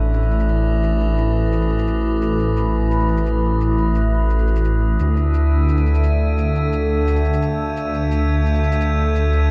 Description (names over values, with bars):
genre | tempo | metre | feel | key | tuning
dark technical drum and bass | 173 BPM | 4/4 | straight | unclear | A4 = 439 Hz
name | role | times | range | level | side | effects
metallic inharmonic drone | sustained chords | 0.0-9.5 s | A3 to E5 | -24 LUFS | equal | chorus, built-in reverb, phaser
detuned saw bass | bass | 0.0-9.5 s | A1 to D2 | -20 LUFS | equal | chorus, overdrive
shaker | drums | 0.1-9.4 s | none | -50 LUFS | equal | overdrive, low-pass filter on perc
room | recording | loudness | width
light reverb, digital ambience | none | -19 LUFS | mono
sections
0.0-9.5 A section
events
filter sweep on synth drone 0.0-9.5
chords
0.0 A5; 5.0 D5